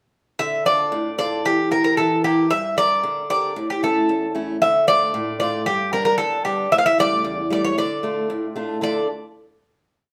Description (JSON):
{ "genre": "greek folk, Greek bouzouki band", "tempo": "114 BPM", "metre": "2/4", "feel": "straight", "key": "D harmonic minor", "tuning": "A4 = 440 Hz", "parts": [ { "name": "Greek bouzouki", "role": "melody", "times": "0.4-9.1 s", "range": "G4 to F5", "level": "-22 LUFS", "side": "equal", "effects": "none" }, { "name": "picked old ladder-braced acoustic guitar", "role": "accompaniment", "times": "0.4-9.1 s", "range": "E2 to Bb4", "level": "-25 LUFS", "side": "equal", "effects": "none" } ], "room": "wet studio reverb, RT60 0.8 s", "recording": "band playing live in one room", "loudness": "-20 LUFS", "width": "mono", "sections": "0.4-8.8 A section; 8.8-9.9 final chord", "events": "none", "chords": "0.4 Dm; 1.5 Edim; 2.5 Gm; 3.6 A; 4.6 Dm; 5.7 G; 6.7 A7; 7.8 Dm" }